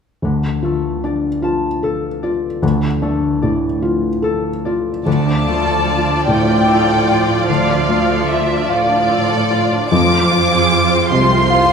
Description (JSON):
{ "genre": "cinematic, emotional film score for orchestra", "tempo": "50 BPM (dotted quarters)", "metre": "6/8", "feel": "rubato", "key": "D minor", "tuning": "A4 = 440 Hz", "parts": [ { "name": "felt-muted upright piano", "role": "accompaniment", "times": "0.2-11.7 s", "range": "D2 to A4", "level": "-18 LUFS", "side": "left 1 dB", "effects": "none" }, { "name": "concert harp", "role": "arpeggios", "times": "0.2-11.7 s", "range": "D3 to C6", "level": "-21 LUFS", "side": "left 2 dB", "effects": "none" }, { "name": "warm studio violin section", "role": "melody", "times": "5.1-11.7 s", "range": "D5 to D6", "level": "-18 LUFS", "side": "left 1 dB", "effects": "none" }, { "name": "warm symphonic violin section", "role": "second line", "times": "5.1-11.7 s", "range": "Ab3 to D5", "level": "-20 LUFS", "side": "left 3 dB", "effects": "none" }, { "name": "dark symphonic viola section", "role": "accompaniment", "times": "5.1-11.7 s", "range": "F3 to F4", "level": "-20 LUFS", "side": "right 4 dB", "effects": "none" }, { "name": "dark symphonic cello section", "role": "bass", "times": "5.1-11.7 s", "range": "C2 to A2", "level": "-20 LUFS", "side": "right 3 dB", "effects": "none" } ], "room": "wet recital hall reverb, RT60 1.7 s", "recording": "minimal, uncompressed stereo recording", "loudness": "-13 LUFS", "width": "side -6 dB against mid", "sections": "0.2-5.1 A section; 5.1-11.7 B section", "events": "none", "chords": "0.2 Dm; 9.9 Fm" }